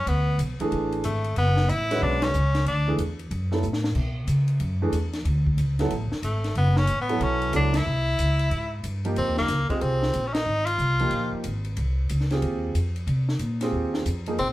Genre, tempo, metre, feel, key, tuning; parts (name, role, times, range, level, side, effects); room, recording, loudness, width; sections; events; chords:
modal jazz; 185 BPM; 4/4; swing 64% on 8ths; B dorian, F minor from 9.2 s; A4 = 440 Hz
edgy tenor saxophone; melody; 0.0-3.0, 6.2-11.3, 14.4-14.5 s; Ab3 to F4; -26 LUFS; left 1 dB
upright bass; bass; 0.0-14.5 s; F#1 to C#3; -24 LUFS; equal
compact cocktail drum kit; drums; 0.1-14.5 s; crash cymbal, hi-hat, kick drum, ride cymbal, snare drum; -34 LUFS; left 1 dB
warm concert grand piano; accompaniment; 0.6-14.4 s; E3 to B4; -28 LUFS; right 2 dB
moderate studio reverb, RT60 0.6 s; heard from further back in the room; -22 LUFS; side -16 dB against mid
0.0-9.2 A section; 9.2-14.5 B section
band accent 2.2, 7.7, 10.3; drum fill 3.6-4.0
0.0 Bm9; 7.9 C(b9); 9.2 Fm11